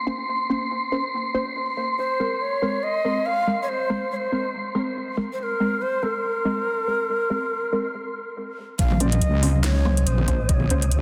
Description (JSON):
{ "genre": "deep dubstep", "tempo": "141 BPM", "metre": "4/4", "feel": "swing 56% on 16ths, half-time", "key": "Bb minor", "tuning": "A4 = 438 Hz", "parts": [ { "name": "wind-like tuned noise texture", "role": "texture", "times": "0.0-11.0 s", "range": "Eb5 to C6", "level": "-32 LUFS", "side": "equal", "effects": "built-in reverb" }, { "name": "filtered dub chord stab", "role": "stabs", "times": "0.1-10.9 s", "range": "Ab3 to C5", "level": "-30 LUFS", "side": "equal", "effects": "phaser, analog chorus, cassette tape, dub echo" }, { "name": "long shakuhachi", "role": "melody", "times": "2.0-10.9 s", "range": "Bb4 to F5", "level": "-28 LUFS", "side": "equal", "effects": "dub echo" }, { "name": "wobble bass", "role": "bass", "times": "8.8-11.0 s", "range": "Bb1 to Db2", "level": "-23 LUFS", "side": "equal", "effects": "chorus" }, { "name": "electronic kick drum", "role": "drums", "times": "8.8-10.6 s", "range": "none", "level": "-24 LUFS", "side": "equal", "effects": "none" }, { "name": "garage drum kit", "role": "drums", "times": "8.8-11.0 s", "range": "handclaps, hi-hat, snare drum", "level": "-30 LUFS", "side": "equal", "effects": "low-pass filter on hats, low-pass filter on snare" }, { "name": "congas", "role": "percussion", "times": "8.9-10.7 s", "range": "none", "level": "-30 LUFS", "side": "equal", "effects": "none" } ], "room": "moderate lush hall reverb, RT60 2.1 s", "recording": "dense, heavily limited modern master", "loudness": "-24 LUFS", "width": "mono", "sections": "0.0-8.8 A section; 8.8-11.0 B section", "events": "break 7.9-8.8; drop 8.8-11.0", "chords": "0.0 Bbmadd9; 2.0 Abadd9; 8.8 Bbmadd9", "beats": "| 0.28 0.71 1.13 1.56 | 1.98 2.41 2.83 3.26 | 3.68 4.11 4.54 4.96 | 5.39 5.81 6.24 6.66 | 7.09 7.51 7.94 8.37 | 8.79 9.22 9.64 10.07 | 10.49 10.92" }